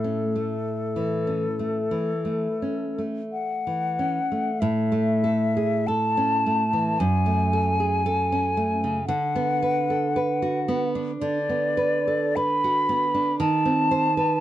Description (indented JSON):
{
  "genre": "romantic duo for flute and classical guitar",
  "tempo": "40-60 BPM",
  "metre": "4/4",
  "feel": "rubato",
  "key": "A major",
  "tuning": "A4 = 440 Hz",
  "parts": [
    { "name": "hollow concert flute", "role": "melody", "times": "0.0-14.4 s", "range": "A4 to B5", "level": "-24 LUFS", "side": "left 2 dB", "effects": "none" },
    { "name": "nylon-string guitar", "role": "accompaniment", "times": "0.0-14.4 s", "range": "F#2 to B#4", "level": "-24 LUFS", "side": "right 2 dB", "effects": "none" }
  ],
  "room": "light reverb",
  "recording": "dark, warm production",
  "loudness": "-21 LUFS",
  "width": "side -13 dB against mid",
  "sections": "0.0-4.6 A section; 4.6-14.4 B section",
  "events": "none",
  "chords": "0.0 A; 7.0 F#m; 9.1 Bm/D; 13.4 D#dim7(no3)"
}